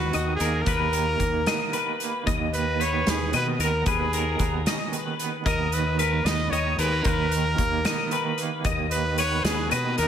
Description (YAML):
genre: math rock and midwest emo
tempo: 75 BPM (dotted quarters)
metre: 6/8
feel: straight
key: unclear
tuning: A4 = 440 Hz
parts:
  - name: brilliant trumpet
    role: melody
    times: 0.0-10.1 s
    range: F#4 to D#5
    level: -28 LUFS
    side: right 1 dB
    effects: none
  - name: twangy electric guitar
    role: accompaniment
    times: 0.0-10.1 s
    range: D#2 to Db4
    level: -31 LUFS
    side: right 7 dB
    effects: tremolo, slapback echo
  - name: twelve-string electric guitar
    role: arpeggios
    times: 0.0-10.1 s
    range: A#4 to D#5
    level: -28 LUFS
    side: left 6 dB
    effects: ensemble chorus
  - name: fuzz fingered electric bass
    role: bass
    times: 0.0-10.1 s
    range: D#2 to Cb3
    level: -28 LUFS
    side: equal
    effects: overdrive
  - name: loose indie drum kit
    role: drums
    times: 0.1-10.1 s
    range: hi-hat, kick drum, snare drum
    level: -29 LUFS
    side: equal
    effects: none
room: moderate lush hall reverb, RT60 1.6 s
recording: big arena sound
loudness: -22 LUFS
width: side -9 dB against mid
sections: 0.0-10.1 A section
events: none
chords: 0.0 Bmaj7/D#; 2.3 Abmadd9/Eb; 5.5 Bmaj7/D#; 8.7 Bmaj9/D#